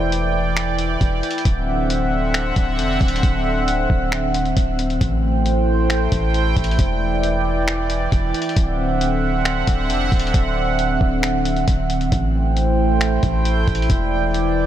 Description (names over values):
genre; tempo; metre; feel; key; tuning
hip hop, atmospheric cloud-rap; 135 BPM; 4/4; half-time; unclear; A4 = 440 Hz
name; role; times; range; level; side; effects
sweeping resonant pad; sustained chords; 0.0-14.7 s; D3 to G5; -20 LUFS; right 1 dB; chorus, sidechain pumping
long sustained 808-style bass; bass; 0.0-14.7 s; D1 to A1; -22 LUFS; equal; none
lo-fi sampler-style drum kit; drums; 0.1-14.4 s; finger snaps, hi-hat, kick drum; -21 LUFS; equal; none
room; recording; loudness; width
light reverb; none; -17 LUFS; side -11 dB against mid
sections
0.0-14.7 A section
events
none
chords
0.0 Em7; 1.5 D9; 5.0 Am7; 6.8 Em7; 8.6 D9; 12.1 Am7; 13.9 Em7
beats
0.12 0.57 1.01 | 1.46 1.90 2.34 2.79 | 3.23 3.68 4.12 4.57 | 5.01 5.46 5.90 6.34 | 6.79 7.23 7.68 8.12 | 8.57 9.01 9.46 9.90 | 10.34 10.79 11.23 11.68 | 12.12 12.57 13.01 13.46 | 13.90 14.34